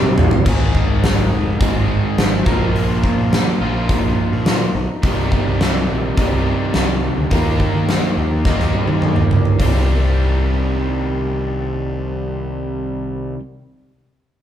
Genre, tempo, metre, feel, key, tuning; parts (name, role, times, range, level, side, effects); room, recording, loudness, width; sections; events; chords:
classic rock; 105 BPM; 4/4; straight; C minor; A4 = 439 Hz
crunchy overdriven guitar; riff; 0.0-13.4 s; Ab2 to Ab4; -20 LUFS; equal
fuzz fingered electric bass; bass; 0.0-13.3 s; F1 to Eb3; -22 LUFS; equal; overdrive
huge arena drum kit; drums; 0.0-9.7 s; crash cymbal, hi-hat, kick drum, snare drum, toms; -17 LUFS; equal
moderate large studio reverb, RT60 1.3 s; band playing live in one room; -15 LUFS; side -10 dB against mid
0.5-9.6 A section; 9.6-11.9 B section
drum fill 0.0-0.5, 8.5-9.6
0.5 Ab; 2.5 Bbsus4; 5.0 Cm; 7.3 Eb; 9.6 Cm